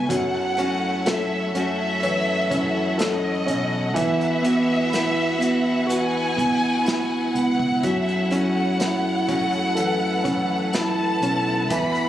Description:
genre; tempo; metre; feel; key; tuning
pop ballad; 62 BPM; 4/4; straight; unclear; A4 = 440 Hz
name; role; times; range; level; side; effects
warm studio violin section; melody; 0.0-12.1 s; D#5 to B5; -25 LUFS; equal; none
warm concert grand piano; accompaniment; 0.0-12.1 s; E3 to C#5; -24 LUFS; right 1 dB; none
warm studio string section; sustained chords; 0.0-12.1 s; E4 to F#5; -30 LUFS; left 1 dB; none
picked steel-string acoustic guitar; arpeggios; 0.0-12.1 s; F#2 to F#4; -30 LUFS; left 2 dB; tape echo
fingered electric bass; bass; 0.0-12.1 s; B1 to F#2; -29 LUFS; left 1 dB; none
unplugged drum kit; drums; 0.1-12.1 s; hi-hat, kick drum, snare drum; -29 LUFS; equal; none
room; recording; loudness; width
light reverb, small room ambience; recorded on a phone in the room, club reverb; -20 LUFS; side -12 dB against mid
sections
0.0-12.1 A section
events
none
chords
0.1 F#m7; 4.0 Esus2; 7.8 F#m7

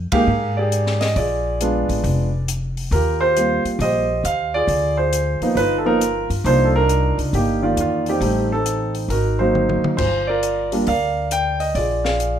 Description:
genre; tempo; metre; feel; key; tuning
jazz piano trio; 136 BPM; 4/4; swing 66% on 8ths; Eb major; A4 = 440 Hz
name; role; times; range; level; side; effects
upright bass; bass; 0.0-12.4 s; F1 to Ab2; -22 LUFS; left 1 dB; none
warm concert grand piano; melody; 0.1-12.4 s; Eb3 to G5; -18 LUFS; right 2 dB; plate reverb
compact cocktail drum kit; drums; 0.1-12.3 s; crash cymbal, hi-hat, kick drum, ride cymbal, snare drum, toms; -28 LUFS; left 4 dB; none
room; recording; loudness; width
light reverb; none; -17 LUFS; side -9 dB against mid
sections
0.0-2.9 A section; 2.9-12.4 B section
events
band accent 0.1; drum fill 9.6-10.0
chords
0.0 Fm11; 1.2 Bb7b9; 2.9 Eb69; 4.7 Dm7b5; 5.6 G7alt; 6.5 Cm11; 8.2 Am7b5; 9.1 Ab9; 10.0 Gm7; 11.8 Bb7

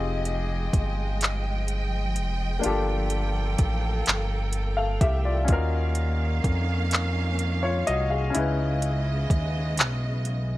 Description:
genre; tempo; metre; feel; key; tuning
slow six-eight R&B; 42 BPM (dotted quarters); 6/8; straight; unclear; A4 = 440 Hz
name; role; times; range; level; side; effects
warm baby grand piano; accompaniment; 0.0-10.6 s; Bb3 to F5; -30 LUFS; left 3 dB; none
warm symphonic string section; sustained chords; 0.0-10.6 s; Db3 to G5; -32 LUFS; right 1 dB; none
smooth synth bass; bass; 0.0-10.6 s; F1 to F2; -26 LUFS; equal; none
smooth R&B drum kit; drums; 0.3-10.5 s; handclaps, hi-hat, kick drum; -23 LUFS; equal; overdrive
room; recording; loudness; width
little or no reverb; none; -23 LUFS; side -16 dB against mid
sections
0.0-10.6 A section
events
none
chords
0.0 Fm9; 2.6 Gm9; 5.5 Ebm9; 8.3 Dbm9

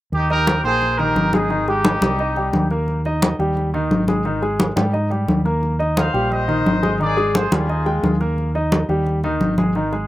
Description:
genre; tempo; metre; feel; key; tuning
latin, salsa; 174 BPM; 4/4; straight; unclear; A4 = 439 Hz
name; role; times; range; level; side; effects
clear trumpet section; melody; 0.1-2.7, 6.0-8.2 s; Eb4 to F5; -21 LUFS; equal; slapback echo
fingered electric bass; bass; 0.1-10.1 s; Ab1 to Ab2; -22 LUFS; right 1 dB; none
congas; percussion; 0.1-10.1 s; none; -20 LUFS; left 1 dB; none
clear baby grand piano; accompaniment; 0.3-10.1 s; Eb3 to G5; -22 LUFS; left 1 dB; none
room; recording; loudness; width
little or no reverb; recorded outdoors, with no room sound; -16 LUFS; side -15 dB against mid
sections
0.1-10.1 A section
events
none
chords
0.1 Eb6; 1.5 Abmaj7; 2.9 Ab5

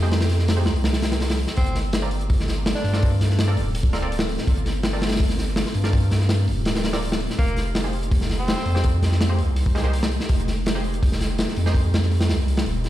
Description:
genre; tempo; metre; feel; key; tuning
drum and bass, jungle; 165 BPM; 4/4; straight; unclear; A4 = 440 Hz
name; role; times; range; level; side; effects
ethereal airy pad; sustained chords; 0.0-12.9 s; Ab3 to A4; -32 LUFS; equal; ensemble chorus, built-in reverb, vintage 12-bit sampler grit
filtered dub chord stab; stabs; 0.0-11.8 s; Bb3 to D5; -33 LUFS; right 2 dB; chorus, dub echo
saturated sub bass; bass; 0.0-12.9 s; D1 to G2; -22 LUFS; equal; none
crunchy breakbeat drum kit; drums; 0.0-12.9 s; hi-hat, kick drum, snare drum; -23 LUFS; equal; none
raspy tenor saxophone; melody; 1.6-3.1, 7.4-8.9 s; Bb3 to D4; -32 LUFS; equal; dub echo
room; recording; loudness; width
small room reverb; played on a big sound system in a bare room, large studio reverb; -19 LUFS; side -14 dB against mid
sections
0.0-12.9 A section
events
break 12.5-12.9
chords
0.0 Fm11; 1.6 Gm11; 7.4 Fm11

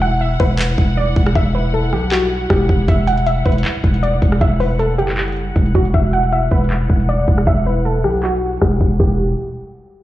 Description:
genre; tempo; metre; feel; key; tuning
hip hop, trap; 157 BPM; 4/4; half-time; E minor; A4 = 439 Hz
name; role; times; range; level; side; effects
warbly dusty pluck; melody; 0.0-9.2 s; F#4 to F#5; -20 LUFS; equal; chorus, low-pass filter, tape echo
dark studio string section; sustained chords; 0.0-9.2 s; G3 to F#5; -27 LUFS; equal; none
growling 808-style bass; bass; 0.0-9.4 s; E1 to B1; -17 LUFS; equal; none
trap drum kit; drums; 0.4-9.1 s; crash cymbal, handclaps, hi-hat, kick drum, rim click; -17 LUFS; equal; none
room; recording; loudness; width
light reverb; played on a big sound system in a bare room, large studio reverb, low-pass filter; -14 LUFS; side -14 dB against mid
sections
0.0-9.0 A section; 9.0-10.0 B section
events
break 0.0-2.9; filter sweep 0.0-9.0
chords
0.0 Emadd9

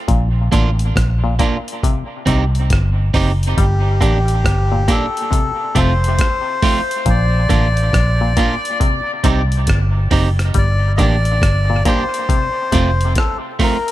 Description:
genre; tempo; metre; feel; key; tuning
dub reggae; 69 BPM; 4/4; swing 64% on 16ths; G minor; A4 = 438 Hz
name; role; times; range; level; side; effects
muted clav; arpeggios; 0.1-12.9 s; Bb2 to G3; -26 LUFS; left 5 dB; overdrive, dub echo
vintage muted fingered electric bass; bass; 0.1-13.1 s; F1 to C2; -15 LUFS; equal; none
breakbeat sampler-style drum kit; drums; 0.1-13.9 s; hi-hat, kick drum, rim click; -18 LUFS; equal; none
electric guitar at the edge of break-up; accompaniment; 0.5-13.8 s; A3 to G4; -22 LUFS; right 5 dB; tremolo, dub echo
melodica; melody; 3.6-13.9 s; G4 to Eb5; -21 LUFS; left 2 dB; dub echo
room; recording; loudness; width
little or no reverb; echo-heavy mix; -14 LUFS; side -15 dB against mid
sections
0.0-13.9 A section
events
break 0.0-3.6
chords
0.1 Bb; 1.8 Cm; 3.6 Gm; 5.3 F; 7.1 Bb; 8.8 Cm; 10.5 Gm; 12.3 F

